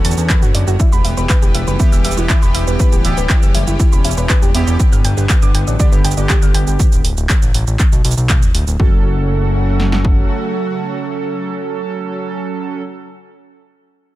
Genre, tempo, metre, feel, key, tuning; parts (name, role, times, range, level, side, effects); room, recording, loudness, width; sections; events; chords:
melodic techno; 120 BPM; 4/4; straight; F# phrygian; A4 = 444 Hz
lush unison pad; sustained chords; 0.0-12.8 s; C#3 to G4; -25 LUFS; left 1 dB; chorus, sidechain pumping
woody wave-folded pluck; arpeggios; 0.0-9.0 s; E4 to A6; -24 LUFS; equal; chorus, cassette tape, sidechain pumping, tape echo
fat analog bass; bass; 0.0-10.3 s; D1 to E2; -17 LUFS; equal; sidechain pumping
punchy analog drum machine; drums; 0.0-8.8 s; handclaps, hi-hat, shaker; -21 LUFS; right 2 dB
techno drum kit; drums; 0.3-10.2 s; kick drum, snare drum; -13 LUFS; equal; overdrive
analog synth brass; stabs; 1.8-12.8 s; D3 to A4; -22 LUFS; right 3 dB; chorus, sidechain pumping, tape echo
digital ambience; -12 LUFS; side -16 dB against mid
0.0-8.8 A section; 8.8-12.8 B section
drop 0.0-8.8
0.0 Bm7; 0.8 Em; 4.8 G; 8.8 F#m